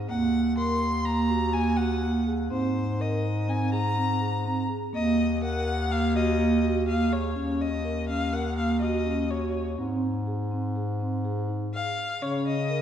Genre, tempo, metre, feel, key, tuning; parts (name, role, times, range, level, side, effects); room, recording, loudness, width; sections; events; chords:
contemporary instrumental, chamber music in an uneven meter; 124 BPM; 5/4; straight; Eb dorian; A4 = 440 Hz
clear bass clarinet; bass; 0.0-12.8 s; Eb2 to Db3; -28 LUFS; left 1 dB
warm violin; melody; 0.1-12.8 s; C5 to C6; -30 LUFS; left 3 dB
vibraphone with soft mallets; arpeggios; 0.1-12.8 s; Bb3 to Bb4; -28 LUFS; right 2 dB
wet concert hall reverb, RT60 1.9 s; heard from further back in the room; -24 LUFS; side -9 dB against mid
0.0-7.4 A section; 7.4-12.8 B section
0.1 Ebm; 2.5 Abadd9; 4.9 Ebm; 7.4 Ebm7; 9.8 Ab; 12.2 Db5